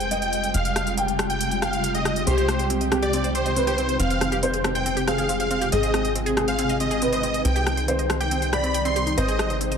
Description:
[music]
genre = uplifting trance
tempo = 139 BPM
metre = 4/4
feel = straight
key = C harmonic minor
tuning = A4 = 441 Hz
[part]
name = dense compressed supersaw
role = melody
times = 0.0-9.6 s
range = C5 to C6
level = -27 LUFS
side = right 1 dB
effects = low-pass filter, ping-pong delay
[part]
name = dark baby grand piano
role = second line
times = 0.0-9.7 s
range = G4 to G5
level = -28 LUFS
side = left 1 dB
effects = ensemble chorus, diffuse ambient delay
[part]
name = shimmering ambient pad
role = sustained chords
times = 0.0-9.8 s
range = C3 to G5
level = -28 LUFS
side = left 1 dB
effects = chorus, built-in reverb
[part]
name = plucky analog bass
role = bass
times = 0.0-9.8 s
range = F1 to C2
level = -28 LUFS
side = equal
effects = none
[part]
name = house drum kit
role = drums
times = 0.0-9.8 s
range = hi-hat, rim click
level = -29 LUFS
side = left 1 dB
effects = none
[part]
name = wide unison pluck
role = arpeggios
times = 2.3-9.8 s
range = C4 to G5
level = -29 LUFS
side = right 1 dB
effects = auto-pan, diffuse ambient delay
[sound]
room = moderate plate reverb, RT60 2.6 s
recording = dreamy mix soaked in reverb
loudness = -20 LUFS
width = side -7 dB against mid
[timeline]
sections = 0.0-9.8 A section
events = none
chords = 0.0 Fmadd9; 2.3 Cm; 4.0 Fmadd9; 5.7 Ab; 7.5 Cm; 9.2 Ab

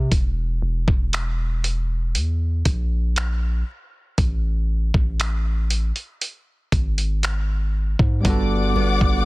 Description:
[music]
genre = contemporary R&B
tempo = 59 BPM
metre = 4/4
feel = straight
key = G major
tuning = A4 = 439 Hz
[part]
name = long sustained 808-style bass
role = bass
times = 0.0-9.2 s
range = E1 to C3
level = -22 LUFS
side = equal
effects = none
[part]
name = dusty soul sampler-style drum kit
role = drums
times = 0.1-9.2 s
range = finger snaps, hi-hat, kick drum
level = -22 LUFS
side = equal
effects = vintage 12-bit sampler grit, soft clipping on snare
[part]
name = tine electric piano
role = accompaniment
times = 8.2-9.2 s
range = G3 to A4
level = -24 LUFS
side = right 3 dB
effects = medium stereo tremolo
[part]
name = warm studio string section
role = sustained chords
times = 8.2-9.2 s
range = D5 to D6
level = -24 LUFS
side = left 5 dB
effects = sidechain pumping
[part]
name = nylon-string guitar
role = arpeggios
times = 8.2-9.2 s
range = G2 to B3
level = -26 LUFS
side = left 2 dB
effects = none
[sound]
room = digital ambience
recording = dense, heavily limited modern master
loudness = -20 LUFS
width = side -21 dB against mid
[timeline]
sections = 0.0-9.2 A section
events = none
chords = 0.1 N.C.; 8.3 Gmaj7

